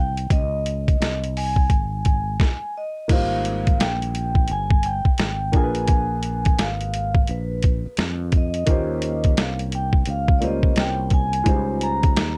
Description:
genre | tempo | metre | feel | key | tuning
hip hop, jazz-hop | 86 BPM | 4/4 | swing 63% on 16ths | Ab major | A4 = 440 Hz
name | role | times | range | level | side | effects
vibraphone with soft mallets | melody | 0.0-12.4 s | Cb5 to Bb5 | -29 LUFS | equal | none
dark grand piano | accompaniment | 0.0-12.4 s | G3 to C5 | -31 LUFS | equal | none
fretless electric bass | bass | 0.0-12.4 s | G1 to F2 | -28 LUFS | equal | none
boom bap sampler-style drum kit | drums | 0.2-12.4 s | crash cymbal, hi-hat, kick drum, snare drum | -22 LUFS | equal | none
room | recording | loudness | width
little or no reverb | dark, warm production | -21 LUFS | mono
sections
0.0-3.1 A section; 3.1-12.4 B section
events
stop 2.4-3.1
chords
0.3 Dbsus2; 1.7 Ab5; 3.1 Abmaj13; 5.5 Bb7b9; 8.7 Eb13; 11.5 Dbmaj9#11

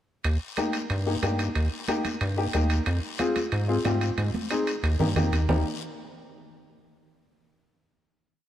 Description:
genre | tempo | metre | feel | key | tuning
latin, cumbia | 183 BPM | 4/4 | straight | Eb major | A4 = 440 Hz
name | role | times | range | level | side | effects
rubbery square bass | bass | 0.2-5.6 s | Eb2 to Ab2 | -25 LUFS | equal | none
guiro | percussion | 0.2-5.6 s | none | -40 LUFS | left 7 dB | none
timbales | percussion | 0.2-5.6 s | none | -34 LUFS | right 4 dB | none
warm upright piano | accompaniment | 0.6-5.6 s | Bb3 to Ab4 | -28 LUFS | left 2 dB | none
congas | percussion | 0.6-5.6 s | none | -33 LUFS | right 2 dB | none
room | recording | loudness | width
moderate plate reverb, RT60 2.6 s | heard from further back in the room | -24 LUFS | side -12 dB against mid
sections
0.2-5.5 A section; 5.5-6.8 final chord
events
drum fill 4.2-5.5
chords
0.2 Eb; 2.9 Fm; 4.2 Ab; 4.8 Eb

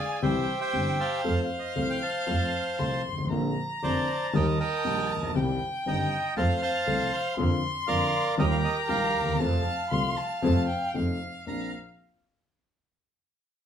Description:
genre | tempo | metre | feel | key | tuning
tango | 118 BPM | 4/4 | rubato | Bb major | A4 = 440 Hz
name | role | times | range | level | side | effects
bandoneon | melody | 0.0-11.7 s | G4 to C6 | -29 LUFS | right 2 dB | none
warm violin | second line | 0.0-11.7 s | F5 to C6 | -33 LUFS | left 2 dB | none
dark concert grand piano | accompaniment | 0.2-11.7 s | F1 to A4 | -29 LUFS | left 2 dB | none
clear double bass | bass | 0.2-11.7 s | F1 to F2 | -31 LUFS | right 2 dB | none
room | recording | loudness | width
wet studio reverb, RT60 0.6 s | band playing live in one room | -25 LUFS | side -8 dB against mid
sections
0.0-11.5 A section; 11.5-13.5 B section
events
none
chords
0.2 C; 1.2 F; 3.3 Bbadd9; 4.3 Eb; 5.4 Cm; 6.4 F; 7.4 Bbadd9/F; 8.4 Ebadd9; 9.4 F; 10.9 F7; 11.5 Bbadd9

